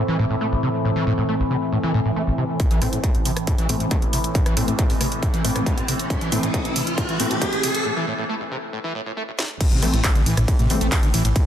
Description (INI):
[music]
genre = driving peak-time techno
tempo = 137 BPM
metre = 4/4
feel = straight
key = A minor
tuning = A4 = 440 Hz
[part]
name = screaming distorted acid line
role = riff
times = 0.0-11.4 s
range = A1 to A3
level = -25 LUFS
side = equal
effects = distortion, wide subtle chorus, cassette tape, sidechain pumping, tape echo
[part]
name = overtone-sweeping drone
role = drone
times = 0.0-11.5 s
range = A2 to E3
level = -30 LUFS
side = right 1 dB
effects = chorus, built-in reverb, phaser, sidechain pumping
[part]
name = deep dark ambient pad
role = texture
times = 0.0-7.9 s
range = C4 to E5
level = -30 LUFS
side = left 2 dB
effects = chorus, built-in reverb, sidechain pumping
[part]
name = electronic kick drum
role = drums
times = 2.6-11.4 s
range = none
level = -21 LUFS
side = equal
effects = distortion, overdrive, studio reverb
[part]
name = techno drum kit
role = drums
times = 2.6-11.4 s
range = crash cymbal, handclaps, hi-hat, ride cymbal, rim click, snare drum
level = -26 LUFS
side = right 1 dB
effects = overdrive, high-pass filter on hats, studio reverb, high-pass filter on snare, high-pass filter on cymbals
[part]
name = riser and impact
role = sound effects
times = 4.9-11.4 s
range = none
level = -28 LUFS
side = equal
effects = none
[part]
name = rave stab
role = stabs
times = 2.8-10.9 s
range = E3 to C4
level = -28 LUFS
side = left 1 dB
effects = chorus, built-in reverb, cassette tape, sidechain pumping, tape echo
[part]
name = dark detuned saw bass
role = bass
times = 9.7-11.3 s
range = A1 to A2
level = -21 LUFS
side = equal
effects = sidechain pumping
[sound]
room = light reverb, digital ambience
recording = dense, heavily limited modern master, high-pass filter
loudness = -19 LUFS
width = side -10 dB against mid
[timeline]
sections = 0.0-2.6 A section; 2.6-9.6 B section; 9.6-11.5 C section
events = filter sweep on acid bass 0.0-2.6, 2.6-9.6; build-up 2.6-9.6; filter sweep 2.6-9.6; riser 4.9-7.9; drum fill 6.1-7.9, 9.4; break 7.9-9.6; drop 9.6-11.5; impact 9.6-11.4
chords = 0.0 Am